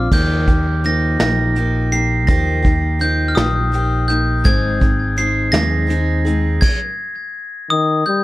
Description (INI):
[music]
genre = indie folk with a building arrangement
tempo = 55 BPM (dotted quarters)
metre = 6/8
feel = straight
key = Eb major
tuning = A4 = 441 Hz
[part]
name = glockenspiel with hard plastic mallets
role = melody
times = 0.0-8.2 s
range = Eb6 to C7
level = -20 LUFS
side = equal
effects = analog delay
[part]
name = fingered electric bass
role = bass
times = 0.0-6.6 s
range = Ab1 to Eb2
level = -18 LUFS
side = equal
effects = none
[part]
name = picked steel-string acoustic guitar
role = accompaniment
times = 0.1-6.6 s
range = Ab2 to Ab4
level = -22 LUFS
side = left 3 dB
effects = none
[part]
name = vintage brush drum kit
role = drums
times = 0.1-6.8 s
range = crash cymbal, hi-hat, kick drum, snare drum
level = -18 LUFS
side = equal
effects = none
[part]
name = clear trombone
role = second line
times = 7.7-8.2 s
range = Eb3 to G3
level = -18 LUFS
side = left 2 dB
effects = none
[sound]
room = little or no reverb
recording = none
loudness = -14 LUFS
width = side -17 dB against mid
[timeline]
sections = 0.1-8.2 A section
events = none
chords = 0.1 Ebadd9; 4.5 Ab